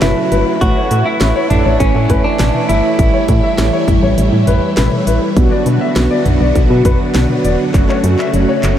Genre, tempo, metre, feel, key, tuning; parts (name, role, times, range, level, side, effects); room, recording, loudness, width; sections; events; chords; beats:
synth-pop; 101 BPM; 4/4; straight; A4 = 440 Hz
direct-recorded clean electric guitar; melody; 0.0-4.4 s; C#4 to A4; -19 LUFS; right 1 dB; lush chorus, tape echo
warm concert grand piano; second line; 0.0-8.6 s; B4 to E5; -20 LUFS; left 5 dB; tape echo
mellow synth brass; accompaniment; 0.0-8.8 s; F#3 to C#5; -19 LUFS; right 2 dB; chorus
string machine, full ensemble; sustained chords; 0.0-8.8 s; C#3 to F#4; -19 LUFS; equal; phaser, ensemble chorus
solid FM bass; bass; 0.0-8.8 s; E1 to B2; -15 LUFS; equal
house drum kit; drums; 0.0-8.8 s; handclaps, hi-hat, kick drum, snare drum, toms; -17 LUFS; equal
moderate huge ambient reverb, RT60 8.1 s; dreamy mix soaked in reverb; -11 LUFS; side -10 dB against mid
0.6-8.8 A section
drum fill 7.7-8.8
0.0 F#m; 0.6 A; 5.4 Bm; 7.7 F#m
0.02 | 0.61 1.21 1.80 2.40 | 2.99 3.58 4.18 4.77 | 5.37 5.96 6.55 7.15 | 7.74 8.34